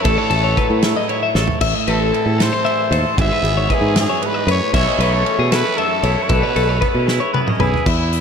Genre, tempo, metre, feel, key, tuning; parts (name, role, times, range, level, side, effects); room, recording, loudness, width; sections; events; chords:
math rock and midwest emo; 77 BPM (dotted quarters); 6/8; straight; A4 = 440 Hz
growling trumpet; melody; 0.0-8.2 s; E4 to E5; -23 LUFS; equal; diffuse ambient delay
twangy electric guitar; accompaniment; 0.0-8.2 s; F#2 to A4; -24 LUFS; right 6 dB; wide subtle chorus
twelve-string electric guitar; arpeggios; 0.0-7.9 s; G#4 to E5; -20 LUFS; left 6 dB; diffuse ambient delay
modern bright fingered electric bass; bass; 0.0-8.2 s; G#1 to B2; -19 LUFS; equal
loose indie drum kit; drums; 0.0-8.2 s; crash cymbal, hi-hat, kick drum, ride cymbal, snare drum, toms; -21 LUFS; right 1 dB
moderate plate reverb, RT60 2.3 s; dreamy mix soaked in reverb; -14 LUFS; side -6 dB against mid
0.0-7.9 A section
drum fill 1.4, 7.1-7.9
0.1 F#m7/A; 1.6 Am; 3.2 E/G#; 4.7 B9sus4